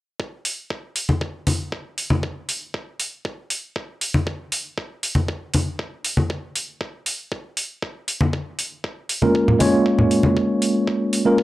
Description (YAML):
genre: nu-disco, nu disco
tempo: 118 BPM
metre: 4/4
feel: straight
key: unclear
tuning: A4 = 441 Hz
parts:
  - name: electronic kick drum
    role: drums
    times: 0.2-11.4 s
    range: none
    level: -30 LUFS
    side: equal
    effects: high-pass filter on kick, small room ambience, high-pass filter on room
  - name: electronic hi-hat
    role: drums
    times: 0.5-11.2 s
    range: none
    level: -25 LUFS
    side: right 1 dB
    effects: small room ambience
  - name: congas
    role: percussion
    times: 1.1-10.3 s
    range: none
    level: -20 LUFS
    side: left 1 dB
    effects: none
  - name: tine electric piano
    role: accompaniment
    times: 9.2-11.4 s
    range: Ab3 to Db5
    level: -16 LUFS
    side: equal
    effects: medium stereo tremolo, analog delay
room: light reverb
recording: dry, gritty hardware recording, cassette tape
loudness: -20 LUFS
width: side -16 dB against mid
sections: 0.2-11.4 A section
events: none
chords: 0.2 N.C.; 8.1 Bbm7